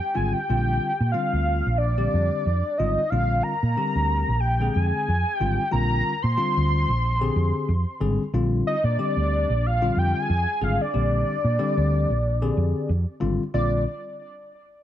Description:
jazz; 92 BPM; 4/4; swing 55% on 16ths; Bb mixolydian; A4 = 440 Hz
wide unison lead; melody; 0.0-13.8 s; D5 to C6; -26 LUFS; equal; tape echo
bell-like tine electric piano; accompaniment; 0.1-13.8 s; D3 to Ab4; -28 LUFS; left 4 dB
woody fretless electric bass; bass; 0.2-13.8 s; Ab1 to Bb2; -23 LUFS; right 1 dB; analog chorus
light reverb; dark, warm production; -21 LUFS; side -11 dB against mid
0.0-13.5 A section; 13.5-14.8 B section
0.0 Bb13; 13.5 Bb

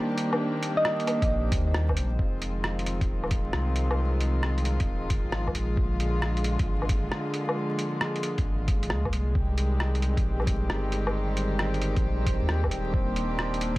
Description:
future garage; 134 BPM; 4/4; swing 67% on 16ths; F dorian; A4 = 440 Hz
warm chamber string section; sustained chords; 0.0-13.8 s; D3 to G4; -30 LUFS; equal; sidechain pumping
drifting glass-harmonics texture; texture; 0.0-2.2, 10.3-13.8 s; C4 to C5; -39 LUFS; right 2 dB; chorus, built-in reverb
lo-fi sampler-style drum kit; drums; 0.2-13.8 s; hi-hat, rim click, woodblock; -32 LUFS; equal; overdrive, small room reverb
thumb-piano-like synth pluck; melody; 0.8-0.9 s; Eb5; -28 LUFS; right 1 dB; chorus, tape echo
warm sub bass; bass; 1.2-13.8 s; Eb1 to Eb2; -28 LUFS; equal; transformer saturation, sidechain pumping
electronic kick drum; drums; 1.2-13.8 s; -28 LUFS; equal; small room reverb
little or no reverb; dry, gritty hardware recording, transformer saturation, vinyl crackle; -24 LUFS; side -19 dB against mid
0.0-2.2 A section; 2.2-13.8 B section
0.0 Ebmaj7; 2.2 Fm7; 5.8 Bb7; 9.4 Abmaj7; 12.9 Ebmaj7

